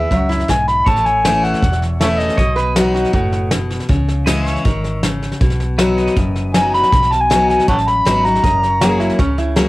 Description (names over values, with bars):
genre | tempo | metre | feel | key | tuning
honky-tonk and classic country | 159 BPM | 4/4 | straight | unclear | A4 = 443 Hz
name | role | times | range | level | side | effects
overdriven harmonica | melody | 0.0-2.6, 6.5-9.0 s | A4 to B5 | -15 LUFS | equal | cassette tape, plate reverb
lap resonator guitar | second line | 0.0-3.5, 8.8-9.7 s | C#4 to B4 | -22 LUFS | right 3 dB | cassette tape, plate reverb
picked steel-string acoustic guitar | accompaniment | 0.0-9.7 s | E2 to F#4 | -19 LUFS | left 2 dB | cassette tape
vintage muted fingered electric bass | bass | 0.0-9.7 s | E1 to C#2 | -20 LUFS | equal | none
soft brush drum kit | drums | 0.1-9.7 s | hi-hat, kick drum, snare drum | -19 LUFS | equal | none
pedal steel guitar | sustained chords | 0.9-9.7 s | A#4 to E5 | -29 LUFS | right 1 dB | wide subtle chorus, cassette tape
room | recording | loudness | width
light reverb | home recording on cassette | -13 LUFS | side -19 dB against mid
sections
0.9-9.7 A section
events
none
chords
0.0 E; 0.9 A; 2.4 B; 3.9 C#m; 5.4 B; 8.4 F#